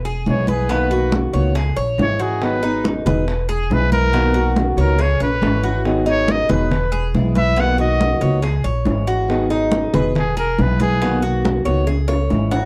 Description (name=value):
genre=latin, Cuban son and guajira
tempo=140 BPM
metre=4/4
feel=straight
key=unclear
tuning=A4 = 443 Hz
part: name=Cuban tres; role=arpeggios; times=0.0-12.7 s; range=B3 to C#5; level=-26 LUFS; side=equal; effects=none
part: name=upright bass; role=bass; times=0.0-12.7 s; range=E1 to C#2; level=-22 LUFS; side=equal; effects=none
part: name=bongos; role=percussion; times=0.1-12.6 s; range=none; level=-31 LUFS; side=equal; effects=none
part: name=congas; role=percussion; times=0.1-12.7 s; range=none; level=-25 LUFS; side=equal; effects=none
part: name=clear trumpet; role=melody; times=0.3-11.2 s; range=G#4 to F#5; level=-24 LUFS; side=equal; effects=plate reverb
part: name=fingerpicked steel-string acoustic guitar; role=accompaniment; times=0.3-12.7 s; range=B2 to G#4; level=-25 LUFS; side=equal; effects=none
room=light reverb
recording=dark, warm production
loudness=-18 LUFS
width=mono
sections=0.0-12.7 A section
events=trumpet solo 0.0-12.7; drum fill 5.2-5.9, 11.9-12.7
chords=0.0 E; 0.7 Bmaj7; 1.6 C#m; 2.4 G#m7; 3.3 E; 4.1 Bmaj7; 5.0 C#m; 5.9 G#m7; 6.7 E; 7.6 Bmaj7; 8.4 C#m; 9.3 G#m7; 10.2 E; 11.0 Bmaj7; 11.9 C#m